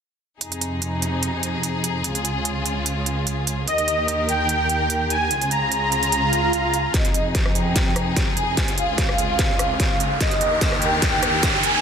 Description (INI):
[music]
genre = heavy wobble dubstep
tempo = 147 BPM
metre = 4/4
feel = half-time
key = F minor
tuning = A4 = 439 Hz
[part]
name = clear studio string section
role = sustained chords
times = 0.4-11.8 s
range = Db2 to Bb4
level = -24 LUFS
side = equal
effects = sidechain pumping
[part]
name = dubstep drum kit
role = drums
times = 0.4-11.7 s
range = hi-hat, rim click, snare drum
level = -25 LUFS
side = right 2 dB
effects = high-pass filter on hats, high-pass filter on snare
[part]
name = soft supersaw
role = melody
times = 3.7-11.8 s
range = Eb5 to Bb5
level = -22 LUFS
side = equal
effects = low-pass filter
[part]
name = swell and riser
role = sound effects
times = 6.2-11.8 s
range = none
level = -25 LUFS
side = right 1 dB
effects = none
[part]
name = electronic kick drum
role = drums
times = 6.9-11.5 s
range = none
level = -23 LUFS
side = equal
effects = none
[sound]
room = moderate lush hall reverb, RT60 2.2 s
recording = dense, heavily limited modern master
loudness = -19 LUFS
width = side -7 dB against mid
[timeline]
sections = 0.4-6.9 A section; 6.9-11.8 B section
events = swell 6.2-6.9; build-up 6.9-11.8; drum fill 6.9-11.8; riser 6.9-11.8; filter sweep 6.9-11.8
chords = 0.4 Fm7; 2.0 Db; 3.7 Eb; 5.3 Db; 6.9 Fm7; 8.6 Db; 10.2 Eb